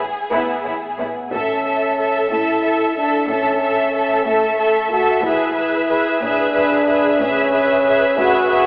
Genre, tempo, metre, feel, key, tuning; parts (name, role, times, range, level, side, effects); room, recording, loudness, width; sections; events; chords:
cinematic, epic orchestral film score; 61 BPM (dotted quarters); 6/8; straight; A major; A4 = 439 Hz
dark symphonic violin section; melody; 0.0-8.7 s; G#4 to E5; -21 LUFS; equal
dark symphonic violin section; second line; 0.0-8.7 s; E4 to B4; -20 LUFS; equal
warm symphonic viola section; accompaniment; 0.0-8.7 s; B3 to A4; -23 LUFS; equal
warm studio double bass section; bass; 0.0-7.8 s; A1; -43 LUFS; equal
warm symphonic cello section; bass; 0.0-8.7 s; A2; -34 LUFS; equal
mellow French horn section; sustained chords; 1.0-8.7 s; A3 to F#4; -18 LUFS; equal
solo taiko drums; drums; 1.3-7.0 s; -34 LUFS; equal
wet scoring stage reverb, RT60 1.7 s; heard from further back in the room, telephone sound; -15 LUFS; side -31 dB against mid
0.0-1.3 A section; 1.3-8.7 B section
build-up 0.0-1.3
0.0 E/A; 1.3 A; 5.2 E/A